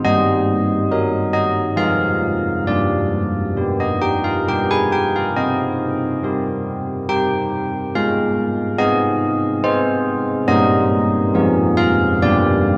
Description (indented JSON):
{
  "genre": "classical, tune for church bells",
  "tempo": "66-71 BPM",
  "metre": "3/4",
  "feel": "straight",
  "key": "C minor",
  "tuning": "A4 = 440 Hz",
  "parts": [
    { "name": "carillon bells", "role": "solo", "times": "0.0-12.8 s", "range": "F3 to Ab5", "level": "-18 LUFS", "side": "equal", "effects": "none" }
  ],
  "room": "wet cathedral reverb, RT60 5.4 s",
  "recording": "dark, warm production",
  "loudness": "-18 LUFS",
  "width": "mono",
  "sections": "0.0-12.8 A section",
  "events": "none",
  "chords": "0.0 Eb/G; 1.8 Fm; 2.7 G; 5.4 Cm; 7.9 Ab; 10.5 Eb/G; 11.3 Fm; 12.2 G"
}